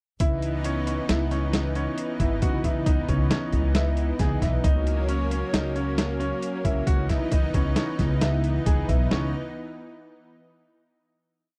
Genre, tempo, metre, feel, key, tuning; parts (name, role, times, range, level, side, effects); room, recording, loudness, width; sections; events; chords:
progressive instrumental, band music in an uneven meter; 134 BPM; 5/4; straight; C# dorian; A4 = 441 Hz
lush unison pad; accompaniment; 0.2-9.3 s; E3 to D#4; -32 LUFS; equal; chorus
bright grand piano; arpeggios; 0.2-9.3 s; C#4 to G#4; -34 LUFS; equal
upright bass; bass; 0.2-9.3 s; G#1 to C#3; -28 LUFS; equal
boom bap sampler-style drum kit; drums; 0.2-9.2 s; hi-hat, kick drum, snare drum; -28 LUFS; equal
little or no reverb; dry, close 1970s-style studio recording; -25 LUFS; mono
0.2-9.1 A section; 9.1-11.4 final chord
0.2 C#m7; 4.6 F#/C#; 6.9 C#m7